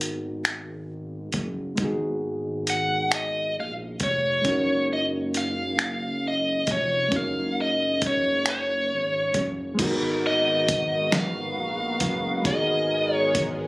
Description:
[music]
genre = slow six-eight R&B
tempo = 45 BPM (dotted quarters)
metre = 6/8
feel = straight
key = G# dorian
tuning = A4 = 441 Hz
[part]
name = reed electric piano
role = accompaniment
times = 0.0-13.7 s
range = G#3 to A#4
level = -30 LUFS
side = equal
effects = overdrive
[part]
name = fat analog bass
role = bass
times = 0.0-13.7 s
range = E#1 to A#1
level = -32 LUFS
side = equal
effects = none
[part]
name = dusty soul sampler-style drum kit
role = drums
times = 0.0-13.6 s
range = crash cymbal, finger snaps, hi-hat, kick drum, snare drum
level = -26 LUFS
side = equal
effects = overdrive
[part]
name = biting lead guitar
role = melody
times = 2.7-13.4 s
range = C#5 to F#5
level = -24 LUFS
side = equal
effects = overdrive
[part]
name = warm analog pad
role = sustained chords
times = 9.8-13.7 s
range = G#3 to A#4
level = -32 LUFS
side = equal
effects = chorus
[sound]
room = moderate studio reverb, RT60 0.8 s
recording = recorded on a phone in the room, club reverb, compression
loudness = -22 LUFS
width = side -23 dB against mid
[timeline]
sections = 0.0-9.8 A section; 9.8-13.7 B section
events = none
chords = 0.0 G#m9; 4.5 F#69; 9.8 G#m9

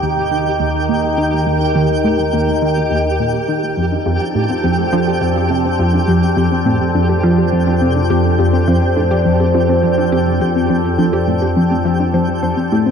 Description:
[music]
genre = ambient, sequencer-driven space music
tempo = 104 BPM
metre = 4/4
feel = straight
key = unclear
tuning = A4 = 440 Hz
[part]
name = evolving wavetable pad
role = sustained chords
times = 0.0-12.9 s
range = Eb3 to Bb4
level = -18 LUFS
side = left 1 dB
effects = phaser, built-in reverb
[part]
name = tight sequenced synth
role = riff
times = 0.0-12.9 s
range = Eb2 to F3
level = -17 LUFS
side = right 1 dB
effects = chorus, phaser, tape echo
[part]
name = warm sub bass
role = bass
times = 0.0-12.9 s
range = Eb2 to F2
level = -22 LUFS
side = equal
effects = none
[part]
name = twinkling granular texture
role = texture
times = 0.0-12.9 s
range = G4 to G5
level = -22 LUFS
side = right 1 dB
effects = built-in reverb
[part]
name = warbly dusty pluck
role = arpeggios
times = 3.9-12.9 s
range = C4 to C5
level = -22 LUFS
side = moving between left 6 dB and right 1 dB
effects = chorus, auto-pan, tape echo
[sound]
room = wet concert hall reverb, RT60 2.3 s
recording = none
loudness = -13 LUFS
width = side -7 dB against mid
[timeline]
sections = 0.0-12.9 A section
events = fade-in on sub bass 0.0-12.9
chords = 0.0 Eb; 3.8 F6

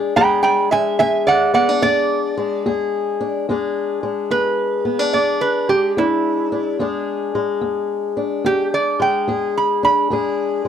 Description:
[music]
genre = acoustic country blues, solo or duo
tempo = 72 BPM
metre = 4/4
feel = swing 66% on 8ths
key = E mixolydian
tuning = A4 = 435 Hz
[part]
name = fingerpicked swing-style acoustic guitar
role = accompaniment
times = 0.0-10.7 s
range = E2 to G#4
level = -20 LUFS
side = left 5 dB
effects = none
[part]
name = metal-body resonator slide guitar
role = melody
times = 0.2-10.7 s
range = E4 to B5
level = -17 LUFS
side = right 4 dB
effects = none
[sound]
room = little or no reverb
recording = dry, close 1970s-style studio recording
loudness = -16 LUFS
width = side -8 dB against mid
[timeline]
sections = 0.0-3.5 A section; 3.5-10.7 B section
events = resonator guitar played with a steel bar solo 0.0-3.5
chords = 0.0 E7

